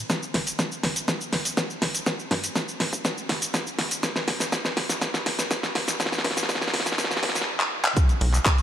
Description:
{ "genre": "progressive house", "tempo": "122 BPM", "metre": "4/4", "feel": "straight", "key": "unclear", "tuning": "A4 = 440 Hz", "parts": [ { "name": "tight sequencer bass", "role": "bass", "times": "0.0-8.4 s", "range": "D1 to G2", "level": "-28 LUFS", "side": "equal", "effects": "sidechain pumping" }, { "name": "electronic kick drum", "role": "drums", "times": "0.1-8.6 s", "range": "none", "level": "-26 LUFS", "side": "equal", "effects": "high-pass filter on kick, studio reverb" }, { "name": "pop drum kit", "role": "drums", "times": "0.1-8.6 s", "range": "cabasa, handclaps, hi-hat, snare drum", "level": "-24 LUFS", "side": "equal", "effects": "studio reverb" } ], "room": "moderate huge ambient reverb, RT60 4.8 s", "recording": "high-pass filter", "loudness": "-23 LUFS", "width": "side -10 dB against mid", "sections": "0.0-8.0 A section", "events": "build-up 0.0-8.0; drum fill 0.0-7.5, 7.6-8.0", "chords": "none", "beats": "| 0.10 0.59 1.08 1.57 | 2.06 2.56 3.05 3.54 | 4.03 4.52 5.02 5.51 | 6.00 6.49 6.98 7.47 | 7.97 8.46" }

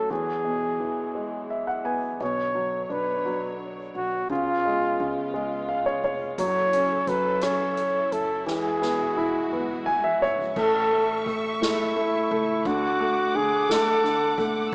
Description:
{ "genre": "six-eight pop ballad", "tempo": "57 BPM (dotted quarters)", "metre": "6/8", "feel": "straight", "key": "A major", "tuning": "A4 = 440 Hz", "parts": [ { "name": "warm flugelhorn", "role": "melody", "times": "0.0-14.5 s", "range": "E4 to C#5", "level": "-24 LUFS", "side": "equal", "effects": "none" }, { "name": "warm concert grand piano", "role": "accompaniment", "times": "0.0-14.7 s", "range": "E2 to G#5", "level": "-27 LUFS", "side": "equal", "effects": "none" }, { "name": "warm studio string section", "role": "sustained chords", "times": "0.0-14.7 s", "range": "C#3 to D6", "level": "-33 LUFS", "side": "equal", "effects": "none" }, { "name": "upright bass", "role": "bass", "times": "2.2-14.7 s", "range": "E1 to D2", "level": "-42 LUFS", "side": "equal", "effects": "none" }, { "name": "soft-mallet drum kit", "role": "drums", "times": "6.4-14.7 s", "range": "crash cymbal, hi-hat, kick drum, ride cymbal, rim click, snare drum, toms", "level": "-34 LUFS", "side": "equal", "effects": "none" } ], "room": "light reverb, small room ambience", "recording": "rough home demo mix, small speaker sound", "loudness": "-22 LUFS", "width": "side -37 dB against mid", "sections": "0.0-2.2 A section; 2.2-10.6 B section; 10.6-14.7 C section", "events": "grand piano fill 1.2-2.2, 5.3-6.4, 9.5-10.6; drum fill 8.5-10.6", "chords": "0.1 Eadd9; 2.2 Bmadd9; 4.3 C#7; 6.4 F#m7; 8.5 Eadd9; 10.6 A; 12.7 D", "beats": "| 0.10 1.16 | 2.21 3.26 | 4.30 5.34 | 6.38 7.42 | 8.46 9.51 | 10.56 11.61 | 12.65 13.69 | 14.73" }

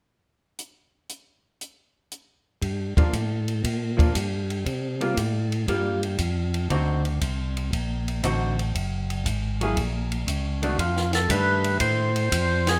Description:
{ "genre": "soul jazz organ trio", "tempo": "118 BPM", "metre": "4/4", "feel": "swing 68% on 8ths", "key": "F mixolydian", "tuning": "A4 = 440 Hz", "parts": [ { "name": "compact cocktail drum kit", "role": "drums", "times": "0.6-12.7 s", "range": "hi-hat, kick drum, ride cymbal, snare drum", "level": "-31 LUFS", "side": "equal", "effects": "none" }, { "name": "tonewheel organ", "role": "bass", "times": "2.6-12.8 s", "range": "Gb1 to C3", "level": "-28 LUFS", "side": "equal", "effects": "overdrive" }, { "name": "vintage hollow-body jazz guitar", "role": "accompaniment", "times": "3.0-12.1 s", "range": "D3 to Ab4", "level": "-31 LUFS", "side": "equal", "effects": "none" }, { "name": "percussive tonewheel organ", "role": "melody", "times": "10.6-12.8 s", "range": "F4 to C5", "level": "-27 LUFS", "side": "equal", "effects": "slow rotary speaker" } ], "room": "light reverb", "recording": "none", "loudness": "-25 LUFS", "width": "mono", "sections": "0.6-2.6 A section; 2.6-10.8 B section; 10.8-12.8 C section", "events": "none", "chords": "0.6 N.C.; 2.6 Gm7; 4.7 C7sus4; 6.7 D7b9; 8.7 Gbadd9; 10.8 F13", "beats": "| 0.58 1.09 1.60 2.11 | 2.62 3.13 3.64 4.15 | 4.66 5.17 5.68 6.19 | 6.70 7.21 7.72 8.23 | 8.74 9.25 9.76 10.27 | 10.78 11.29 11.80 12.31" }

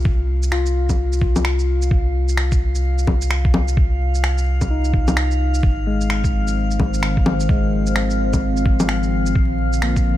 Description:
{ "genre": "future garage", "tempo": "129 BPM", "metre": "4/4", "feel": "swing 62% on 16ths", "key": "C minor", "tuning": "A4 = 441 Hz", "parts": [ { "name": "tine electric piano", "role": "accompaniment", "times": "0.0-10.2 s", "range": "Ab3 to F4", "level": "-26 LUFS", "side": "left 5 dB", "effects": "sidechain pumping, ping-pong delay" }, { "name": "warm sub bass", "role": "bass", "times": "0.0-10.2 s", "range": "Ab1 to C2", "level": "-20 LUFS", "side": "equal", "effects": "sidechain pumping" }, { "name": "drifting glass-harmonics texture", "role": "texture", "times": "0.0-10.2 s", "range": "F5", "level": "-29 LUFS", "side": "right 2 dB", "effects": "chorus, built-in reverb" }, { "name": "electronic kick drum", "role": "drums", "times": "0.1-10.0 s", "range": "none", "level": "-19 LUFS", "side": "equal", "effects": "studio reverb" }, { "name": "electronic shaker, finger snaps and bongos", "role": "drums", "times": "0.4-10.0 s", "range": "none", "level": "-23 LUFS", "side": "left 1 dB", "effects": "studio reverb" }, { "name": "warbly tape-like pad", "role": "sustained chords", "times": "6.2-10.2 s", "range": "D3 to C5", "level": "-24 LUFS", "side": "left 1 dB", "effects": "chorus, built-in reverb, sidechain pumping" } ], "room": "little or no reverb", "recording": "dark, warm production, vinyl crackle", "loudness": "-16 LUFS", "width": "side -14 dB against mid", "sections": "0.0-10.2 A section", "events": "none", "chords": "0.0 Cm; 5.6 Ab6; 9.4 Bb", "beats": "| 0.05 0.52 0.98 1.45 | 1.91 2.38 2.84 3.31 | 3.77 4.24 4.71 5.17 | 5.63 6.10 6.57 7.03 | 7.50 7.96 8.43 8.89 | 9.36 9.82" }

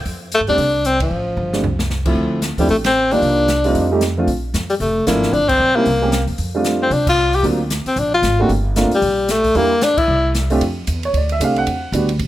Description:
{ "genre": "jazz, small-group swing and bop", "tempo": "227 BPM", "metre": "4/4", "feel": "swing 59% on 8ths", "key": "D minor", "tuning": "A4 = 442 Hz", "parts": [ { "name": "upright bass", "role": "bass", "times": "0.0-12.3 s", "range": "F1 to G2", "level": "-21 LUFS", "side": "equal", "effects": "none" }, { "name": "open jazz drum kit", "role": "drums", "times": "0.1-12.3 s", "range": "crash cymbal, hi-hat, kick drum, ride cymbal, snare drum, toms", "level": "-25 LUFS", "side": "equal", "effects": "none" }, { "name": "clear tenor saxophone", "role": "melody", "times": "0.3-10.3 s", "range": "F3 to G4", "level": "-16 LUFS", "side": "left 2 dB", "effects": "plate reverb" }, { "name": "dark upright piano", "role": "accompaniment", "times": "0.5-12.1 s", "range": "D2 to Gb5", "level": "-19 LUFS", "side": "right 2 dB", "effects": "none" } ], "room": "light reverb", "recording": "none", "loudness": "-14 LUFS", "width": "side -14 dB against mid", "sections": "0.0-2.2 A section; 2.2-10.6 B section; 10.6-12.3 C section", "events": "band accent 1.0, 2.8, 5.5, 7.0, 9.9; drum fill 1.4-1.9", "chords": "0.1 F69; 2.2 Dm7; 3.2 Cm11; 3.7 F7; 4.3 Bbmaj9#11; 5.3 Gm; 5.9 C7b9; 6.4 F6; 7.4 D7alt; 8.5 Gm11; 9.6 Em7b5; 10.1 C; 10.6 F69; 11.7 Em7", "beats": "| 0.06 0.32 0.58 0.85 | 1.11 1.37 1.64 1.90 | 2.16 2.43 2.69 2.96 | 3.22 3.48 3.75 4.01 | 4.28 4.54 4.80 5.07 | 5.33 5.59 5.86 6.12 | 6.39 6.65 6.91 7.18 | 7.44 7.71 7.97 8.23 | 8.50 8.76 9.03 9.29 | 9.55 9.82 10.08 10.35 | 10.61 10.87 11.14 11.40 | 11.67 11.93 12.20" }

